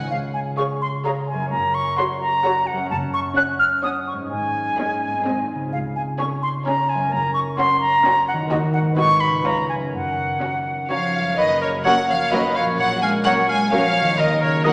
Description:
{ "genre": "cinematic, playful, whimsical film cue", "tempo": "128 BPM", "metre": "3/4", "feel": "straight", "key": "Db major, F# major from 8.5 s", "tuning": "A4 = 440 Hz", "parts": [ { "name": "concert harp", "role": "arpeggios", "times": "0.0-14.7 s", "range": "Gb2 to Db5", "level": "-29 LUFS", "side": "equal", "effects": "none" }, { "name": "bright concert flute", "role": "second line", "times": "0.1-14.7 s", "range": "D#5 to Gb6", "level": "-23 LUFS", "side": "equal", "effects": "none" }, { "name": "warm studio cello section", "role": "bass", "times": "0.1-14.7 s", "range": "Db2 to G#3", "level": "-33 LUFS", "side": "equal", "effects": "none" }, { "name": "warm studio double bass section", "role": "bass", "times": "0.1-14.6 s", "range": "Gb1 to D#2", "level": "-36 LUFS", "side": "equal", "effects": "none" }, { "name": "warm studio violin section", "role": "melody", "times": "0.6-14.7 s", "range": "Bb4 to G#5", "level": "-25 LUFS", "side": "equal", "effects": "none" }, { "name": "rich studio violin section", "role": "second line", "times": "0.6-14.7 s", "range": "C#4 to Db5", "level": "-34 LUFS", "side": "equal", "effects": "none" }, { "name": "rich studio viola section", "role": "accompaniment", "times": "0.6-14.7 s", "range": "F#3 to Ab4", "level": "-32 LUFS", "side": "equal", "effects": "none" }, { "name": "clear oboe", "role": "second line", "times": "10.9-14.7 s", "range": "A#4 to E#5", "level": "-25 LUFS", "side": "equal", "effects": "none" }, { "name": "mellow French horn section", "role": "sustained chords", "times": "11.4-14.7 s", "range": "F#3 to A#4", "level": "-34 LUFS", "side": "equal", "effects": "none" }, { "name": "warm bassoon", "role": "accompaniment", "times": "11.8-14.7 s", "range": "F#3", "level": "-34 LUFS", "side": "equal", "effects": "none" }, { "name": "dark clarinet", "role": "second line", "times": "11.9-14.7 s", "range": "A#4", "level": "-33 LUFS", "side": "equal", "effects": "none" } ], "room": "wet scoring stage reverb, RT60 1.8 s", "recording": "none", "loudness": "-21 LUFS", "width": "mono", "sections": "0.1-11.4 A section; 11.4-14.7 B section", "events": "none", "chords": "0.1 Db; 1.5 Gb; 2.9 Gb5; 4.3 Absus4; 5.2 Ab; 5.7 Db; 7.1 Gb; 8.5 D#m; 9.0 G#m7; 9.4 C#7; 9.9 F#; 12.8 F#/A#; 14.2 D#m", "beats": "| 0.11 0.58 1.05 | 1.52 1.98 2.44 | 2.90 3.37 3.83 | 4.30 4.78 5.25 | 5.72 6.19 6.66 | 7.13 7.59 8.05 | 8.51 8.97 9.44 | 9.92 10.41 10.89 | 11.37 11.85 12.32 | 12.78 13.25 13.71 | 14.18 14.65" }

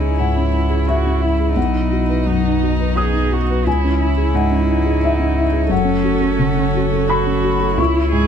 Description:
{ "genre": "neoclassical piano and strings", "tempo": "87 BPM", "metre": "3/4", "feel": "rubato", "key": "C# minor", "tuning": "A4 = 441 Hz", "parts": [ { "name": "dark cello", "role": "second line", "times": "0.0-8.3 s", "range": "C#4 to G#4", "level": "-23 LUFS", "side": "right 6 dB", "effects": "none" }, { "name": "felt-muted upright piano", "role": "accompaniment", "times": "0.0-8.3 s", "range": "B1 to D#6", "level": "-18 LUFS", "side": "left 2 dB", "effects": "none" }, { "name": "warm viola", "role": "accompaniment", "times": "0.0-8.3 s", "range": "D#4 to A4", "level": "-26 LUFS", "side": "right 2 dB", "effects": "none" }, { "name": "rich chamber string section", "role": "sustained chords", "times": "0.0-8.3 s", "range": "E3 to D#5", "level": "-28 LUFS", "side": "left 1 dB", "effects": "none" }, { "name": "warm sub bass", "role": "bass", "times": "0.0-8.3 s", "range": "F#1 to C#2", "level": "-19 LUFS", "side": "equal", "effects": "none" } ], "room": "little or no reverb", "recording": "close, detailed microphones", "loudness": "-15 LUFS", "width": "side -8 dB against mid", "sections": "0.0-8.3 A section", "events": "none", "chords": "0.0 C#m; 1.6 B; 3.7 C#m; 5.7 F#m", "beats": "0.18 0.87 | 1.56 2.26 2.97 | 3.66 4.35 5.03 | 5.71 6.39 7.09 | 7.78" }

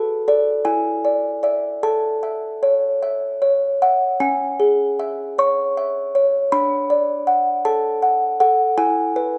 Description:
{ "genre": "classical, lullaby for music box", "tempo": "52 BPM (dotted quarters)", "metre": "6/8", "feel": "straight", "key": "unclear", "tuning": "A4 = 440 Hz", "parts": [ { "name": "music box", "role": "solo", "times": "0.0-9.4 s", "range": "C#4 to C#6", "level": "-19 LUFS", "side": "equal", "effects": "none" } ], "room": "moderate recital hall reverb, RT60 1.5 s", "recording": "nothing above 10.8 kHz", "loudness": "-19 LUFS", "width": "mono", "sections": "0.0-4.2 A section; 4.2-9.4 B section", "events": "none", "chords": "0.0 D/F#; 0.7 E7; 1.8 A; 4.2 C#m; 6.5 D; 8.8 E", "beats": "0.66 | 1.83 3.02 | 4.20 5.38 | 6.51 7.65 | 8.78" }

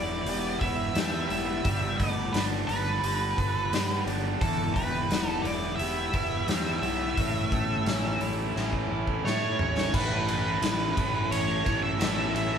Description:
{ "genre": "classic rock", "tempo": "87 BPM", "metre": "4/4", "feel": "straight", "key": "unclear", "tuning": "A4 = 440 Hz", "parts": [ { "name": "octave-fuzz lead guitar", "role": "melody", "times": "0.0-12.6 s", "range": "A4 to E5", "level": "-31 LUFS", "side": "right 2 dB", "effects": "distortion" }, { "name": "overdriven electric guitar", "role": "riff", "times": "0.0-12.6 s", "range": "A2 to B4", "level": "-34 LUFS", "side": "left 6 dB", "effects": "none" }, { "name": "tight distorted guitar", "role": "riff", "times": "0.0-12.6 s", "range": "E2 to A4", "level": "-33 LUFS", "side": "right 5 dB", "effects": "distortion" }, { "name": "fuzz fingered electric bass", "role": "bass", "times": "0.0-12.6 s", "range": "E1 to A2", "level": "-32 LUFS", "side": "equal", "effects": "overdrive" }, { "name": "raw garage drum kit", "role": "drums", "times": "0.3-12.5 s", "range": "crash cymbal, hi-hat, kick drum, ride cymbal, snare drum, toms", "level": "-30 LUFS", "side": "left 1 dB", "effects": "none" } ], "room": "moderate studio ambience, RT60 0.5 s", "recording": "band playing live in one room", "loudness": "-25 LUFS", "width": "side -7 dB against mid", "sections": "0.0-9.9 A section; 9.9-12.6 B section", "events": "drum fill 8.6-9.9", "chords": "0.0 Em; 1.6 Gadd9; 4.4 Em; 7.2 A", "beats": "0.26 0.96 | 1.65 2.34 3.03 3.72 | 4.41 5.10 5.79 6.48 | 7.17 7.86 8.55 9.24 | 9.93 10.62 11.31 12.00" }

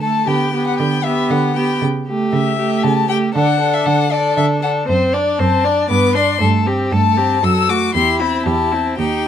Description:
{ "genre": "quick classical-period movement for string quartet", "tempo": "117 BPM", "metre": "3/4", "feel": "straight", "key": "D major", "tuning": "A4 = 440 Hz", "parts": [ { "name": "rich violin", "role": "melody", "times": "0.0-9.3 s", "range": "D5 to E6", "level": "-19 LUFS", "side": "left 9 dB", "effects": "none" }, { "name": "warm violin", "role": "second line", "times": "0.0-9.3 s", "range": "E4 to D5", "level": "-20 LUFS", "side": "left 2 dB", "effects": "none" }, { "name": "rich viola", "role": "accompaniment", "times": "0.0-9.3 s", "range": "F#3 to E4", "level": "-20 LUFS", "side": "right 2 dB", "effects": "none" }, { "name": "rich cello", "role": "bass", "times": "0.0-9.3 s", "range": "Eb2 to D3", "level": "-20 LUFS", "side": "right 3 dB", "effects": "none" } ], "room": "light reverb", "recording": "none", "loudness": "-14 LUFS", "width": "side -9 dB against mid", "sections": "0.0-9.3 A section", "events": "none", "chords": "0.3 G/D; 1.8 A7/C#; 3.4 D5; 4.9 D7/F#; 5.9 G; 6.4 Am7/G; 7.4 D/F#; 7.9 C/E", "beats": "| 0.28 0.79 1.30 | 1.82 2.33 2.84 | 3.35 3.86 4.37 | 4.88 5.39 5.90 | 6.41 6.92 7.43 | 7.95 8.47 8.99" }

